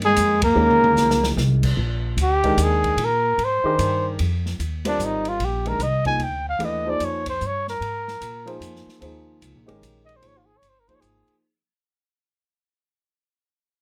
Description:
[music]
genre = modal jazz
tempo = 149 BPM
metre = 3/4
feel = swing 64% on 8ths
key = unclear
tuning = A4 = 441 Hz
[part]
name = breathy bass clarinet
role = second line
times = 0.0-1.3 s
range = Ab3 to Bb3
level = -24 LUFS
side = equal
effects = none
[part]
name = warm concert grand piano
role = accompaniment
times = 0.0-11.4 s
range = Eb3 to G5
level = -30 LUFS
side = equal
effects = none
[part]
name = upright bass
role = bass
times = 0.0-11.3 s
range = G1 to Bb2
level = -27 LUFS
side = equal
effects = none
[part]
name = open jazz drum kit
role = drums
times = 0.0-11.3 s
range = crash cymbal, hi-hat, kick drum, ride cymbal, snare drum, toms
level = -32 LUFS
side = equal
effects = none
[part]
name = mellow trumpet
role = melody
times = 0.1-11.4 s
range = D4 to Ab5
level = -23 LUFS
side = equal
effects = none
[sound]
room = light reverb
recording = none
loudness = -21 LUFS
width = mono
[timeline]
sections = 0.0-1.8 A section; 1.8-11.4 B section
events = band accent 0.4; drum fill 0.6-1.4; fade-out 1.8-11.4; trumpet solo 1.8-11.4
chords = 0.0 Eb9sus4; 1.8 Bb9sus4; 6.6 Eb9sus4

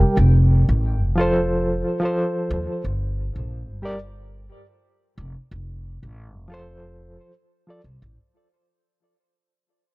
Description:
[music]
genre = trip hop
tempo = 90 BPM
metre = 4/4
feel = swing 54% on 16ths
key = unclear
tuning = A4 = 440 Hz
[part]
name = bright reed electric piano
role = accompaniment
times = 0.0-7.8 s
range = F3 to G5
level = -23 LUFS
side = equal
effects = fast tremolo, tape echo
[part]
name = upright bass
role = bass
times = 0.2-8.2 s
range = F1 to Eb2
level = -19 LUFS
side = equal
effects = none
[sound]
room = little or no reverb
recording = dry, gritty hardware recording, cassette tape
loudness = -18 LUFS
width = side -24 dB against mid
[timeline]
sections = 0.0-8.2 A section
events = fade-out 0.0-8.2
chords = 0.2 F; 2.8 Gm; 5.5 F

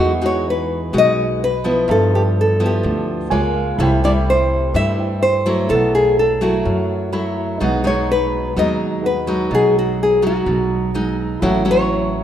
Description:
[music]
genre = bossa nova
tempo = 126 BPM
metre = 4/4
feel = straight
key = unclear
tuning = A4 = 442 Hz
[part]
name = nylon-string guitar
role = accompaniment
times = 0.0-12.2 s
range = F#2 to F#4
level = -20 LUFS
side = equal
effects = none
[part]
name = warm concert grand piano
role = accompaniment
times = 0.0-12.2 s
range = D#4 to B5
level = -26 LUFS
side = right 3 dB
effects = none
[part]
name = upright bass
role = bass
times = 0.0-12.2 s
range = A1 to G2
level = -22 LUFS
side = equal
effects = none
[part]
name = nylon-string guitar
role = melody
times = 0.3-12.2 s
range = F#4 to E5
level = -18 LUFS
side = left 1 dB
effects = none
[sound]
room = moderate concert hall reverb, RT60 1.9 s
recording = minimal, uncompressed stereo recording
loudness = -15 LUFS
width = side -10 dB against mid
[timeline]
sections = 0.0-12.2 A section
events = grand piano fill 3.1-3.8, 6.9-7.6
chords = 0.0 Emaj9; 1.9 G13; 3.3 C#6; 3.8 C6; 5.7 B7sus4; 7.6 G#m7/B; 11.4 A6

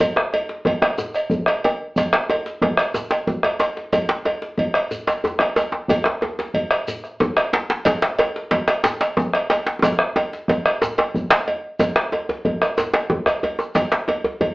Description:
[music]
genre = west african traditional, West African drum ensemble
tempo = 122 BPM (dotted quarters)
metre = 12/8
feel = straight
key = none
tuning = none
[part]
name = bombo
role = percussion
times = 0.0-14.5 s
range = none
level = -22 LUFS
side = equal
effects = none
[part]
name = cowbell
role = percussion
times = 0.0-14.5 s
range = none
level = -24 LUFS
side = right 1 dB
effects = none
[part]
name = djembe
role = percussion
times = 0.0-14.5 s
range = none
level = -28 LUFS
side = left 2 dB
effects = none
[part]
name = djembe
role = percussion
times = 0.0-14.5 s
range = none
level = -21 LUFS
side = equal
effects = none
[part]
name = shekere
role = percussion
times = 1.0-13.9 s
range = none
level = -37 LUFS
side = equal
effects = none
[sound]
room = wet studio reverb, RT60 0.6 s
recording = heard from further back in the room, AM radio sound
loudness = -18 LUFS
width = side -21 dB against mid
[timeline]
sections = 0.0-11.8 A section; 11.8-14.5 A section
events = drum fill 3.3-3.9, 9.8-11.8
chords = none

